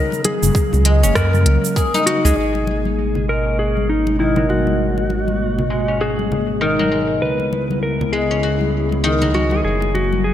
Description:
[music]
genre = organic downtempo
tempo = 99 BPM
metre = 4/4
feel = swing 59% on 16ths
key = G# minor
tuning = A4 = 440 Hz
[part]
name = clean lap steel guitar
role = melody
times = 0.0-10.3 s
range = D#4 to B4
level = -22 LUFS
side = left 1 dB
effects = ping-pong delay
[part]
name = airy breathy pad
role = sustained chords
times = 0.0-10.3 s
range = B2 to D#5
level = -23 LUFS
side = left 1 dB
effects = chorus, sidechain pumping
[part]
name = guzheng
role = arpeggios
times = 0.0-10.3 s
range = D#3 to G#4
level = -22 LUFS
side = left 2 dB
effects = low-pass filter, ping-pong delay
[part]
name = organic electronic drum kit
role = drums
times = 0.1-2.4 s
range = cabasa, hi-hat, rim click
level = -23 LUFS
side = right 3 dB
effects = gated reverb
[part]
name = congas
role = percussion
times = 0.1-10.2 s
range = none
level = -26 LUFS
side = left 3 dB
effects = none
[part]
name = smooth synth bass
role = bass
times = 0.4-10.3 s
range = F#1 to F#2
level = -20 LUFS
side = equal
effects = none
[part]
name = electronic kick drum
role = drums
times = 0.5-1.9 s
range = none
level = -19 LUFS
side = equal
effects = none
[sound]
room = moderate lush hall reverb, RT60 1.9 s, digital ambience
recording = bright 1980s-style digital production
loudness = -15 LUFS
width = side -11 dB against mid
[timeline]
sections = 0.0-2.4 A section; 2.4-10.3 B section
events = filter sweep on guzheng 2.4-10.3; filter sweep on analog synth pad 2.4-10.3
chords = 0.0 F#; 2.4 G#madd9; 7.2 C#m7; 9.6 F#7

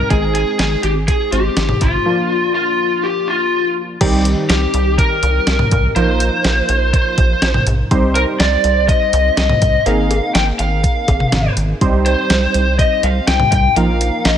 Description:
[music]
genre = synth-pop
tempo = 123 BPM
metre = 4/4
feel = straight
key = C minor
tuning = A4 = 440 Hz
[part]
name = lead guitar through a small cranked amp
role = melody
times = 0.0-14.4 s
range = F4 to G5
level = -17 LUFS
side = left 2 dB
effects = overdrive
[part]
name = warm analog keys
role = accompaniment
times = 0.0-14.4 s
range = Eb3 to C5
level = -21 LUFS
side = right 1 dB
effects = chorus
[part]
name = rubbery square bass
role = bass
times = 0.0-14.4 s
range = Ab1 to C2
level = -17 LUFS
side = equal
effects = none
[part]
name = clean 12-bit digital drum machine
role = drums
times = 0.1-14.4 s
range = cowbell, crash cymbal, hi-hat, kick drum, snare drum, toms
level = -17 LUFS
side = equal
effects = none
[sound]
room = light reverb, digital ambience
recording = none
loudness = -13 LUFS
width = side -9 dB against mid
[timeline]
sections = 0.0-4.0 A section; 4.0-14.4 B section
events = none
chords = 0.1 Ab; 2.1 Bb; 4.0 Cm; 6.0 Bbsus4; 7.9 Cm; 9.9 Abadd9; 11.8 Cm; 13.8 Bbsus4

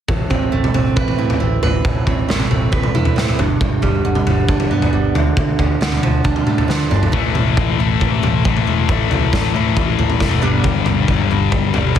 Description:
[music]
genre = quiet-loud alternative rock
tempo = 136 BPM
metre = 4/4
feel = straight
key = A minor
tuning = A4 = 442 Hz
[part]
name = picked steel-string acoustic guitar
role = arpeggios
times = 0.1-12.0 s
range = G2 to B4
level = -22 LUFS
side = right 6 dB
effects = digital delay
[part]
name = picked electric bass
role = bass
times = 0.1-12.0 s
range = E1 to D3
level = -21 LUFS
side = equal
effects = none
[part]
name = raw garage drum kit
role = drums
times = 0.1-12.0 s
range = kick drum, snare drum, toms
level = -17 LUFS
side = equal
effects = none
[part]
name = thick fuzz guitar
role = riff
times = 7.1-12.0 s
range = G2 to A3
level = -18 LUFS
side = left 12 dB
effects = distortion
[sound]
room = light reverb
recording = heavily compressed radio sound, multiband compression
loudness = -14 LUFS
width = side -9 dB against mid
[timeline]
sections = 0.1-7.1 A section; 7.1-12.0 B section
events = drum fill 6.7-7.1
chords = 0.1 Amadd9; 3.4 G; 5.2 Dm; 7.1 A5; 10.4 G

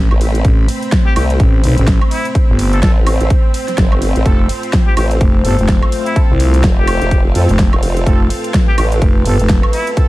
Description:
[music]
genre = bass house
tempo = 126 BPM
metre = 4/4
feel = swing 59% on 16ths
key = unclear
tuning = A4 = 439 Hz
[part]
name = dark analog pad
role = sustained chords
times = 0.0-10.1 s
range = A3 to C5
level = -22 LUFS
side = left 1 dB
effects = lush chorus, sidechain pumping
[part]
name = growling FM bass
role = bass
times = 0.0-9.6 s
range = F1 to C2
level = -13 LUFS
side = equal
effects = overdrive, sidechain pumping
[part]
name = rich symphonic string section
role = texture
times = 0.0-10.1 s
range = C4 to B5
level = -26 LUFS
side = equal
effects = sidechain pumping
[part]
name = formant-sweep wobble bass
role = bass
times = 0.1-9.0 s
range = F1 to F2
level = -15 LUFS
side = equal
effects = chorus, overdrive, sidechain pumping
[part]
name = big-room dance drum kit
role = drums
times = 0.1-10.1 s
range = hi-hat, ride cymbal, snare drum, woodblock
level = -21 LUFS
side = equal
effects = overdrive
[part]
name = electronic kick drum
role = drums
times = 0.4-10.1 s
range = none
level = -12 LUFS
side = equal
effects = overdrive
[part]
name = trumpet with straight mute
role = melody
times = 1.1-9.9 s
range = E4 to A4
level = -24 LUFS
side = left 2 dB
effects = analog delay
[part]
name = clear horn section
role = stabs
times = 4.3-10.1 s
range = C4 to A4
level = -26 LUFS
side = right 4 dB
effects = sidechain pumping, analog delay
[sound]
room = digital ambience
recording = none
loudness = -10 LUFS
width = side -18 dB against mid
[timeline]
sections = 0.0-10.1 A section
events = none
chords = 0.0 Amadd9; 4.3 F

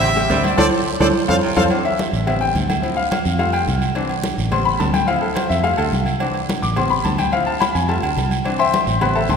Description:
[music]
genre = latin, salsa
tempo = 214 BPM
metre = 4/4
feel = straight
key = C major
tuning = A4 = 442 Hz
[part]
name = bright trumpet section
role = melody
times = 0.0-1.6 s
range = F4 to F5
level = -22 LUFS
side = right 1 dB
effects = none
[part]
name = raspy baritone saxophone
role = second line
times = 0.0-1.6 s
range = C3 to G3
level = -28 LUFS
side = right 4 dB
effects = none
[part]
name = bright upright piano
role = accompaniment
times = 0.0-9.4 s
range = E3 to D6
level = -20 LUFS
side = left 4 dB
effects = none
[part]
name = fingered electric bass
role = bass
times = 0.0-9.4 s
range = A1 to F2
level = -22 LUFS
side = right 1 dB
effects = none
[part]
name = agogo bells and timbales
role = percussion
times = 0.0-9.4 s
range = none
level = -24 LUFS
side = right 5 dB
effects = none
[part]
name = congas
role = percussion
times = 0.0-9.4 s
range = none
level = -25 LUFS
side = equal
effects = none
[part]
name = guiro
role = percussion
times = 0.0-9.4 s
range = none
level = -34 LUFS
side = right 7 dB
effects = none
[sound]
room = wet concert hall reverb, RT60 1.9 s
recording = recorded in a church or concert hall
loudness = -16 LUFS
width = side -6 dB against mid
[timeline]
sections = 0.0-1.7 A section; 1.7-9.4 B section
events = band accent 0.6-1.7; upright piano solo 1.7-9.4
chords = 0.0 Am7; 0.6 Dm7; 1.1 F; 1.7 Cadd9; 2.3 Am7; 2.8 Dm7; 3.4 Fadd9; 4.0 Cadd9; 4.5 Am7; 5.1 Dm7; 5.6 Fadd9; 6.2 Cadd9; 6.8 Am7; 7.3 Dm7; 7.9 Fadd9; 8.5 Cadd9

